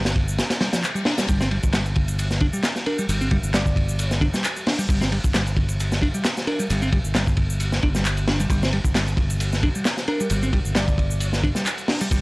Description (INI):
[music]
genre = breakbeat, breaks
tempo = 133 BPM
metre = 4/4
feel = swing 53% on 16ths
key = G minor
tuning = A4 = 441 Hz
[part]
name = fingered electric bass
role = bass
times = 0.0-12.2 s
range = G1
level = -24 LUFS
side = equal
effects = tube saturation
[part]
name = crunchy breakbeat drum kit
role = drums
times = 0.1-12.2 s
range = hi-hat, kick drum, ride cymbal, snare drum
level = -22 LUFS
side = equal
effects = none
[part]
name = electronic shaker and handclaps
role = drums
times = 0.1-12.2 s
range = none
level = -29 LUFS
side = equal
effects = none
[part]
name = reverse cymbal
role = sound effects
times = 0.9-1.3 s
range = none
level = -35 LUFS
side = left 4 dB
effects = none
[part]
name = modern bright picked electric bass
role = riff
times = 0.6-12.2 s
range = F3 to D4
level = -26 LUFS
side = equal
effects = vintage 12-bit sampler grit, tape echo
[part]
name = bell-like FM electric piano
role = melody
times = 2.9-6.7, 10.1-11.4 s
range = Bb4 to D5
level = -32 LUFS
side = right 1 dB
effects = chorus, old record sound, tape echo
[sound]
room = little or no reverb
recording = dry, gritty hardware recording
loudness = -19 LUFS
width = side -24 dB against mid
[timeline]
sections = 0.0-12.2 A section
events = reverse cymbal 0.9-1.3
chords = 0.0 G5